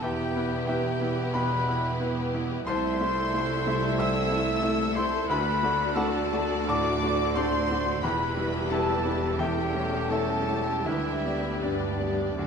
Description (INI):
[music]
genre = classical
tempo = 76-94 BPM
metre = 4/4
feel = rubato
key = G major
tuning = A4 = 438 Hz
[part]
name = clear grand piano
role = melody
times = 0.0-12.5 s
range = C2 to E6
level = -29 LUFS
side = left 1 dB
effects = none
[part]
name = warm symphonic violin section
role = melody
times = 0.0-12.5 s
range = D5 to E6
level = -38 LUFS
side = left 2 dB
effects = none
[part]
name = clear symphonic violin section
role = second line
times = 0.0-12.5 s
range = F#4 to E5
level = -37 LUFS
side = left 1 dB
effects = none
[part]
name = mellow concert flute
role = second line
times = 0.0-12.5 s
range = D5 to E6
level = -33 LUFS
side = left 2 dB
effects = none
[part]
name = mellow oboe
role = second line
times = 0.0-12.5 s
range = D4 to E5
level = -36 LUFS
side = right 2 dB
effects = none
[part]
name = rich symphonic viola section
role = accompaniment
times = 0.0-12.5 s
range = E3 to F#4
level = -34 LUFS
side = equal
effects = none
[part]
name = warm French horn section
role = sustained chords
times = 0.0-12.5 s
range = A3 to B4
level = -34 LUFS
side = left 2 dB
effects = none
[part]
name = clear symphonic double bass section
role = bass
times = 0.0-12.5 s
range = E1 to D2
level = -35 LUFS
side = right 3 dB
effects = none
[part]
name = rich symphonic cello section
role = bass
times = 0.0-12.5 s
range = C2 to G2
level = -34 LUFS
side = right 2 dB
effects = none
[part]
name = timpani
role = percussion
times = 10.9-12.0 s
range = D3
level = -40 LUFS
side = right 1 dB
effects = none
[sound]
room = moderate scoring stage reverb, RT60 1.8 s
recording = minimal, uncompressed stereo recording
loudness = -24 LUFS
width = side -6 dB against mid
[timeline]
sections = 0.0-12.5 A section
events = none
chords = 0.0 Em; 2.7 Am/C; 5.3 D; 8.0 Em; 9.4 A7/E; 10.9 G/D